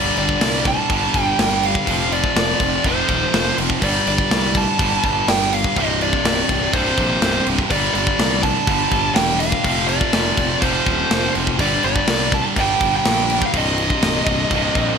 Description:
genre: heavy metal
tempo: 123 BPM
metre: 4/4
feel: straight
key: unclear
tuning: A4 = 437 Hz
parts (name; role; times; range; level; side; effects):
- high-gain lead guitar; melody; 0.0-15.0 s; C5 to A5; -21 LUFS; right 1 dB; distortion
- high-gain distorted guitar; riff; 0.0-15.0 s; C2 to G3; -20 LUFS; equal; distortion
- fuzz picked electric bass; bass; 0.0-14.9 s; C1 to C2; -25 LUFS; equal; overdrive
- tight metal drum kit; drums; 0.2-14.9 s; crash cymbal, kick drum, snare drum; -21 LUFS; equal; gated reverb
room: moderate lush hall reverb, RT60 1.8 s, small room ambience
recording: bright 1980s-style digital production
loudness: -15 LUFS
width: side -6 dB against mid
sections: 0.0-15.0 A section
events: none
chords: 0.0 G5; 1.9 F5; 3.8 G5; 5.8 C5; 7.7 G5; 9.7 F5; 11.6 Gm; 13.5 Cm

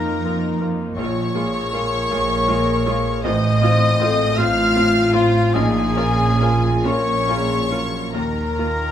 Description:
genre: cinematic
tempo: 44-54 BPM (dotted quarters)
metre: 6/8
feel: rubato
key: Bb minor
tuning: A4 = 437 Hz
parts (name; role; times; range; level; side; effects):
- warm studio violin section; melody; 0.0-8.9 s; F5 to F6; -29 LUFS; left 3 dB; none
- bright clarinet; second line; 0.0-8.9 s; F4 to F5; -25 LUFS; left 2 dB; none
- mellow hollow concert flute; second line; 0.0-8.9 s; F5 to F6; -26 LUFS; left 1 dB; none
- warm studio violin section; second line; 0.0-8.9 s; F4 to F5; -28 LUFS; left 1 dB; none
- clear grand piano; accompaniment; 0.0-8.9 s; A1 to C5; -26 LUFS; left 3 dB; none
- warm studio viola section; accompaniment; 0.0-8.7 s; Ab3 to F4; -30 LUFS; right 2 dB; none
- mellow French horn section; sustained chords; 0.0-8.9 s; Gb3 to C5; -24 LUFS; left 3 dB; none
- dark studio double bass section; bass; 0.0-8.9 s; A1 to F2; -23 LUFS; right 3 dB; none
- warm studio cello section; bass; 0.0-8.9 s; A2 to F3; -24 LUFS; right 3 dB; none
room: light reverb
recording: close, detailed microphones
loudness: -16 LUFS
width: side -10 dB against mid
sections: 0.0-8.9 A section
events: none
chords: 0.0 Ebsus2; 1.0 Bbm7; 3.2 F7/A; 5.6 Bbm7; 8.2 Ebsus2

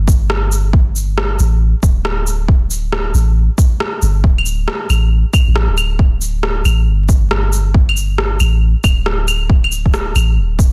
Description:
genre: future garage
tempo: 137 BPM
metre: 4/4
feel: swing 65% on 16ths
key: unclear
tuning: A4 = 440 Hz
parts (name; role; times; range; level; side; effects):
- soft 808-style bass; bass; 0.0-10.7 s; D1 to A1; -17 LUFS; equal; tube saturation, sidechain pumping
- electronic kick drum; drums; 0.1-10.7 s; none; -14 LUFS; equal; overdrive
- electronic shaker, rim click and claves; drums; 0.1-10.7 s; none; -22 LUFS; equal; overdrive
room: little or no reverb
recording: dense, heavily limited modern master, vinyl crackle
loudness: -14 LUFS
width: mono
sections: 0.0-10.7 A section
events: none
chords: none

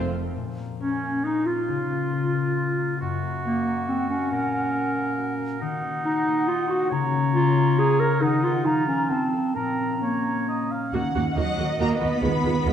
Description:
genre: classical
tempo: 137 BPM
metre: 3/4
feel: straight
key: Bb minor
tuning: A4 = 439 Hz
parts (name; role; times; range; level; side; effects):
- warm symphonic violin section; second line; 0.0-0.1, 10.9-12.7 s; F4 to Gb5; -30 LUFS; equal; none
- warm symphonic viola section; accompaniment; 0.0-0.1, 10.9-12.7 s; Ab3 to Gb4; -30 LUFS; right 3 dB; none
- concert harp; arpeggios; 0.0-12.7 s; Gb2 to Db5; -27 LUFS; left 5 dB; none
- warm symphonic cello section; bass; 0.0-0.3, 11.4-12.7 s; F2 to Cb4; -28 LUFS; right 4 dB; none
- warm symphonic double bass section; bass; 0.0-0.3, 10.9-12.7 s; F1 to Eb2; -28 LUFS; right 4 dB; none
- hollow concert flute; second line; 0.8-10.7 s; Db4 to Bb5; -30 LUFS; right 1 dB; none
- warm clarinet; second line; 0.8-10.7 s; Bb3 to Bb4; -25 LUFS; right 1 dB; none
- warm oboe; second line; 0.8-10.9 s; Db4 to F5; -31 LUFS; right 3 dB; none
- warm symphonic violin section; melody; 11.4-12.7 s; Gb5 to Cb6; -32 LUFS; left 4 dB; none
room: wet concert hall reverb, RT60 2.2 s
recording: dark, warm production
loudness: -22 LUFS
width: side -9 dB against mid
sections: 0.4-10.9 A section; 10.9-12.7 B section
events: none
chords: 0.4 Bbm; 1.7 Bbm/Db; 3.0 Gb; 4.3 Gb/Bb; 5.6 Ebm; 6.9 Bbm/Db; 8.2 Cdim/Eb; 8.7 Bbm/F; 9.1 F; 9.6 Bbm; 10.9 Ebm; 12.2 Fm7b5/Eb

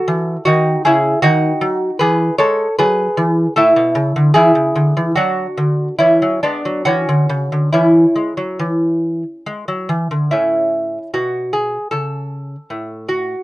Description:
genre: classical, baroque-style dance for lute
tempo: 67-78 BPM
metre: 4/4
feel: rubato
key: A major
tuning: A4 = 441 Hz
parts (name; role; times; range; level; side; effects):
- lute; solo; 0.0-13.4 s; A2 to C#5; -14 LUFS; equal; none
room: light reverb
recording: dry, close 1970s-style studio recording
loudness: -13 LUFS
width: side -17 dB against mid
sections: 0.0-10.3 A section; 10.3-13.4 B section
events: none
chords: 0.5 Emaj13/C#; 2.0 E; 3.6 A; 5.1 D; 6.8 C#madd11; 8.6 N.C.; 10.3 A

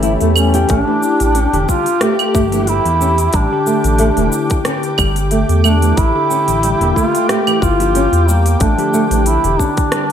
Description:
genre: organic downtempo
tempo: 91 BPM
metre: 4/4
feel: swing 55% on 16ths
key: unclear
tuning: A4 = 440 Hz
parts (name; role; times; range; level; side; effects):
- mellow duduk; melody; 0.0-10.1 s; Bb3 to G4; -17 LUFS; equal; ping-pong delay
- bell-like tine electric piano; accompaniment; 0.0-10.1 s; D3 to A4; -22 LUFS; left 4 dB; medium stereo tremolo, sidechain pumping, ping-pong delay
- warm analog pad; sustained chords; 0.0-10.1 s; G4 to D6; -24 LUFS; equal; chorus, sidechain pumping
- flamenco guitar; arpeggios; 0.0-10.1 s; E3 to G4; -19 LUFS; right 2 dB; ping-pong delay
- smooth synth bass; bass; 0.0-9.6 s; E1 to E2; -16 LUFS; equal; none
- organic electronic drum kit; drums; 0.0-10.1 s; claves, hi-hat, rim click, shaker; -21 LUFS; right 1 dB; overdrive
- electronic kick drum; drums; 0.7-9.9 s; none; -19 LUFS; equal; overdrive
room: moderate lush hall reverb, RT60 1.6 s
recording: bright 1980s-style digital production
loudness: -12 LUFS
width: side -9 dB against mid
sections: 0.0-10.1 A section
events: none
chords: 0.0 A7; 0.7 G5

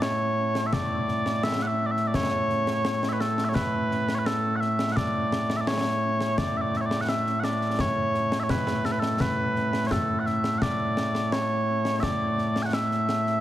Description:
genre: scottish traditional, Scottish pipe music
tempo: 85 BPM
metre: 4/4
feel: straight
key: A major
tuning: A4 = 440 Hz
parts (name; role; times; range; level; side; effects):
- mellow small bagpipes; melody; 0.0-13.4 s; A2 to G#5; -24 LUFS; equal; none
- concert snare drum and concert bass drum; drums; 0.0-13.4 s; none; -30 LUFS; left 1 dB; none
room: wet concert hall reverb, RT60 2.3 s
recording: heavily compressed radio sound, multiband compression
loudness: -23 LUFS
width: side -13 dB against mid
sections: 0.0-13.4 A section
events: none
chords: none

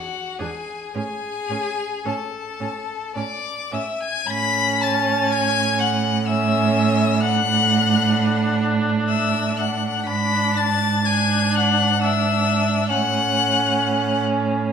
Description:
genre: classical, slow romantic movement for string quartet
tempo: 52-69 BPM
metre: 3/4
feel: rubato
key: A major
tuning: A4 = 440 Hz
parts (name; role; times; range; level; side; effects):
- rich violin; melody; 0.0-14.2 s; F#5 to B6; -23 LUFS; left 9 dB; none
- rich violin; second line; 0.0-14.2 s; F#4 to B5; -27 LUFS; left 4 dB; none
- rich viola; accompaniment; 0.4-14.7 s; C#4 to D4; -25 LUFS; right 2 dB; none
- rich cello; bass; 0.4-14.7 s; E2 to A2; -22 LUFS; right 5 dB; none
room: wet recital hall reverb, RT60 1.6 s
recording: minimal, uncompressed stereo recording, faint mains hum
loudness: -18 LUFS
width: side -7 dB against mid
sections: 0.0-4.3 A section; 4.3-14.7 A section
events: none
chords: 0.0 E7; 1.0 A; 7.2 Dadd9/A; 10.1 E7/G#; 12.9 A

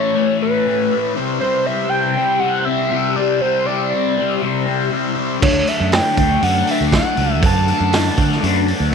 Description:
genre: psychedelic rock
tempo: 120 BPM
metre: 4/4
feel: straight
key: unclear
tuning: A4 = 440 Hz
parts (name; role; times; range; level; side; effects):
- overdriven synth lead; melody; 0.0-8.4 s; B4 to A5; -20 LUFS; right 2 dB; chorus, tape echo
- combo organ; sustained chords; 0.0-8.9 s; F#3 to F#5; -26 LUFS; right 19 dB; none
- fuzz guitar; riff; 0.0-8.9 s; A2 to D4; -19 LUFS; left 13 dB; distortion, phaser
- fingered electric bass; bass; 5.4-8.9 s; C#2 to D3; -19 LUFS; right 2 dB; none
- vintage drum kit; drums; 5.4-8.8 s; crash cymbal, hi-hat, kick drum, snare drum; -19 LUFS; right 2 dB; none
room: little or no reverb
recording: 1960s-style stereo with parts hard left and right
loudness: -15 LUFS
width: side -6 dB against mid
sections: 0.0-8.9 A section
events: none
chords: 0.0 A; 1.2 C; 5.4 D

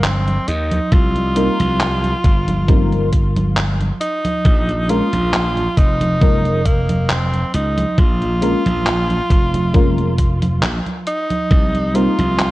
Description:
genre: vaporwave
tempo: 68 BPM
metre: 4/4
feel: swing 54% on 16ths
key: Bb dorian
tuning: A4 = 440 Hz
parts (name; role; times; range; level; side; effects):
- breathy tenor saxophone; melody; 0.0-12.5 s; Bb3 to F4; -21 LUFS; equal; tape echo
- glassy slap bass; bass; 0.0-12.5 s; F1 to Eb2; -19 LUFS; equal; none
- detuned 8-bit digital drum machine; drums; 0.0-12.5 s; congas, handclaps, hi-hat; -22 LUFS; right 1 dB; studio reverb, gated reverb
- electronic kick drum; drums; 0.9-11.7 s; none; -14 LUFS; equal; studio reverb
- mellow FM electric piano; accompaniment; 1.4-12.2 s; G3 to Bb4; -21 LUFS; left 1 dB; lush chorus
room: little or no reverb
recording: cassette tape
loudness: -14 LUFS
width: side -17 dB against mid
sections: 0.0-12.5 A section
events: none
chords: 0.0 Cm7; 4.5 Bbm7; 11.5 Cm7

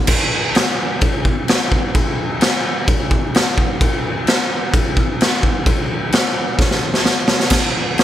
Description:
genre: rock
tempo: 129 BPM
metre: 4/4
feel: straight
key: none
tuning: none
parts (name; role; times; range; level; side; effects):
- raw garage drum kit; drums; 0.1-8.0 s; crash cymbal, kick drum, snare drum; -14 LUFS; equal; none
room: little or no reverb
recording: none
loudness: -14 LUFS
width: side -12 dB against mid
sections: 0.1-7.5 A section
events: drum fill 6.6-7.5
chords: none

